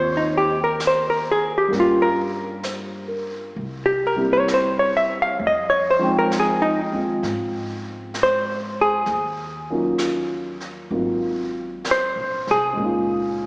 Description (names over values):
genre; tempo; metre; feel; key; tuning
jazz ballad; 65 BPM; 4/4; swing 68% on 8ths; Ab major; A4 = 441 Hz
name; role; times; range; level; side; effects
hollow-body jazz guitar; melody; 0.0-13.5 s; Eb4 to F5; -19 LUFS; equal; none
dark concert grand piano; accompaniment; 0.0-13.5 s; Bb2 to G5; -24 LUFS; equal; none
upright bass; bass; 0.0-13.5 s; Ab1 to Ab2; -34 LUFS; equal; none
jazz brush drum kit; drums; 0.8-13.5 s; brushed snare drum, hi-hat, snare drum; -35 LUFS; equal; none
room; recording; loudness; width
wet church reverb, RT60 2.7 s; recorded in a church or concert hall, small speaker sound; -18 LUFS; side -27 dB against mid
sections
0.0-13.5 A section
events
hollow-body jazz guitar solo 0.0-13.5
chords
0.0 Abmaj9; 1.7 Gm7b5; 3.6 C7; 5.4 Fm7; 9.1 Ebm7; 10.9 Ab13; 12.8 Db69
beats
0.81 | 1.73 2.65 3.56 4.48 | 5.39 6.30 7.22 8.13 | 9.05 9.97 10.90 11.84 | 12.78